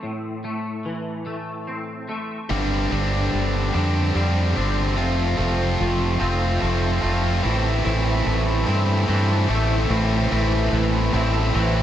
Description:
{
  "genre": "rock",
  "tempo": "49 BPM (dotted quarters)",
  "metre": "6/8",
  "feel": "straight",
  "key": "A minor",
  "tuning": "A4 = 440 Hz",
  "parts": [
    { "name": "twangy electric guitar", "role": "arpeggios", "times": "0.0-11.8 s", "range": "F2 to D4", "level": "-28 LUFS", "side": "left 1 dB", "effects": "ensemble chorus, slapback echo" },
    { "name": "warm analog pad", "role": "sustained chords", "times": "2.5-11.8 s", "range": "D4 to A5", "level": "-32 LUFS", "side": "right 2 dB", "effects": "chorus, tremolo" },
    { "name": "biting overdriven guitar", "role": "riff", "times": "2.5-11.8 s", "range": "G2 to F4", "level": "-23 LUFS", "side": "equal", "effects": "none" },
    { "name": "growling fingered electric bass", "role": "bass", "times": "2.5-11.8 s", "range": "F1 to G2", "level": "-22 LUFS", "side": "equal", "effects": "overdrive" }
  ],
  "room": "light reverb, digital ambience",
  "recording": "none",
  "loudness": "-19 LUFS",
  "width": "side -11 dB against mid",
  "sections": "0.0-2.5 A section; 2.5-11.8 B section",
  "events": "build-up 2.5-11.8",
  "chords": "0.0 Am; 2.5 Gsus4; 5.0 F; 7.4 Am",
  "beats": "| 0.03 1.27 | 2.50 3.74 | 4.98 6.21 | 7.44 8.68 | 9.91 11.14"
}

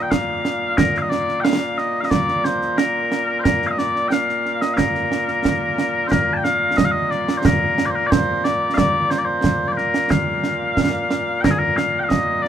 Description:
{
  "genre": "scottish traditional, Scottish pipe music",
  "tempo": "90 BPM",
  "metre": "2/4",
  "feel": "straight",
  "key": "Bb major",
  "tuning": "A4 = 442 Hz",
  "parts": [
    { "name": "mellow small bagpipes", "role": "melody", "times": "0.0-12.5 s", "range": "Bb2 to A5", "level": "-19 LUFS", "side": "left 1 dB", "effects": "none" },
    { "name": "concert snare drum and concert bass drum", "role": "drums", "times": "0.1-12.5 s", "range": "none", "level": "-21 LUFS", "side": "right 3 dB", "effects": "none" }
  ],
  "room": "light reverb",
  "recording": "minimal, uncompressed stereo recording",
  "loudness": "-17 LUFS",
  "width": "side -9 dB against mid",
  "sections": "0.0-6.1 A section; 6.1-12.5 B section",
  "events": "none",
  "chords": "none",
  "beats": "0.11 | 0.78 1.45 | 2.11 2.78 | 3.45 4.11 | 4.78 5.45 | 6.11 6.78 | 7.45 8.11 | 8.78 9.45 | 10.11 10.78 | 11.45 12.11"
}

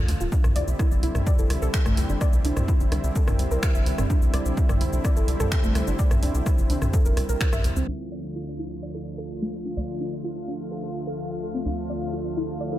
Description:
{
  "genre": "melodic techno",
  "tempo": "127 BPM",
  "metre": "4/4",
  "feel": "straight",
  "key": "D minor",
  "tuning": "A4 = 440 Hz",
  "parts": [
    { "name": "lush unison pad", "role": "sustained chords", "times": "0.0-12.8 s", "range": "D3 to F4", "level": "-31 LUFS", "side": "equal", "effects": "chorus, sidechain pumping" },
    { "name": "soft round pluck", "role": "arpeggios", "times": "0.0-12.8 s", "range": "A3 to F5", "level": "-32 LUFS", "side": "equal", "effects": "analog chorus, sidechain pumping, analog delay" },
    { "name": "tight sequencer bass", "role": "bass", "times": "0.0-12.8 s", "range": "D1 to D2", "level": "-27 LUFS", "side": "equal", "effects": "sidechain pumping" },
    { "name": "punchy analog drum machine", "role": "drums", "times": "0.1-7.9 s", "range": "finger snaps, hi-hat, rim click, shaker, toms", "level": "-30 LUFS", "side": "equal", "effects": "sidechain pumping on perc, low-pass filter on perc, low-pass filter on snare, sidechain pumping on toms, low-pass filter on toms, sidechain pumping on hats, low-pass filter on hats" },
    { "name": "electronic kick drum", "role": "drums", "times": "0.3-7.5 s", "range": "none", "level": "-22 LUFS", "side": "equal", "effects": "none" }
  ],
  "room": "light reverb",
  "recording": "low-pass filter",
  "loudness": "-22 LUFS",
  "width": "side -14 dB against mid",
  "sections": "0.0-7.9 A section; 7.9-12.8 B section",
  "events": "filter sweep on synth arpeggio sound 0.0-7.9; filter sweep 7.9-12.8",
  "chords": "0.3 Cadd9; 7.9 Dm",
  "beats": "| 0.32 0.79 1.27 1.74 | 2.21 2.68 3.16 3.63 | 4.10 4.57 5.05 5.52 | 5.99 6.46 6.93 7.41 | 7.88 8.35 8.82 9.30 | 9.77 10.24 10.71 11.19 | 11.66 12.13 12.61"
}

